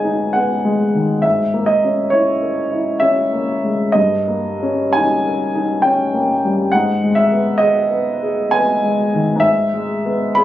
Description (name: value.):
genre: classical, romantic nocturne for solo piano.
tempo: 66 BPM.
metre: 3/4.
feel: uneven beats, rubato.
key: G# minor.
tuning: A4 = 440 Hz.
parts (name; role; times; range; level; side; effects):
warm upright piano; solo; 0.0-10.4 s; G2 to B5; -14 LUFS; equal; none.
room: moderate large studio reverb, RT60 1.3 s.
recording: recorded on a phone in the room, club ambience, compression.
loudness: -14 LUFS.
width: side -13 dB against mid.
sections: 0.0-10.4 A section.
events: none.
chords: 0.0 G#m; 1.2 A#m7b5/G#; 4.0 D#7/G; 6.7 G#m; 9.4 E/G#.